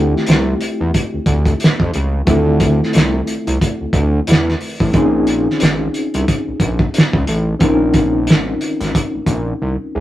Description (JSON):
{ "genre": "R&B, neo-soul", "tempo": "90 BPM", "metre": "4/4", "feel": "swing 58% on 16ths", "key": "unclear", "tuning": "A4 = 440 Hz", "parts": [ { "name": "reed electric piano", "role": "accompaniment", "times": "0.0-10.0 s", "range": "A3 to Bb4", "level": "-19 LUFS", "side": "left 1 dB", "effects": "fast tremolo" }, { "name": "fat analog bass", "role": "bass", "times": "0.0-10.0 s", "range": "Ab1 to F2", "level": "-18 LUFS", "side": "equal", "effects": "none" }, { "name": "cloth-damped thuddy drum kit", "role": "drums", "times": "0.2-9.4 s", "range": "hi-hat, kick drum, snare drum", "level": "-15 LUFS", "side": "equal", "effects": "none" } ], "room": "light reverb", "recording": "rough rehearsal-room recording", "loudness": "-13 LUFS", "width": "side -14 dB against mid", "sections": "0.0-10.0 A section", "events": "none", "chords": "0.0 Dm9; 4.9 Bbm9" }